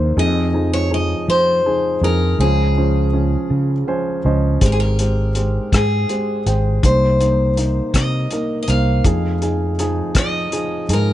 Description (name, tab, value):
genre	acoustic folk-pop ballad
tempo	54 BPM (dotted quarters)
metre	6/8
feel	straight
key	Ab major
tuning	A4 = 439 Hz
part	picked steel-string acoustic guitar	melody	0.0-11.1 s	Ab4 to F5	-21 LUFS	left 1 dB	none
part	warm grand piano	accompaniment	0.0-11.1 s	F1 to Ab5	-21 LUFS	equal	none
part	fretless electric bass	bass	0.0-11.1 s	Ab1 to F3	-18 LUFS	equal	none
part	cloth-damped thuddy drum kit	drums	4.6-11.1 s	hi-hat, kick drum, rim click	-19 LUFS	left 1 dB	none
room	little or no reverb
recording	nothing above 10.6 kHz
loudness	-15 LUFS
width	side -13 dB against mid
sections	0.0-4.6 A section; 4.6-11.1 A section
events	none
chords	0.2 Fm7; 2.4 Dbmaj7; 4.6 Abmaj7; 6.8 Cm7; 9.0 Fm7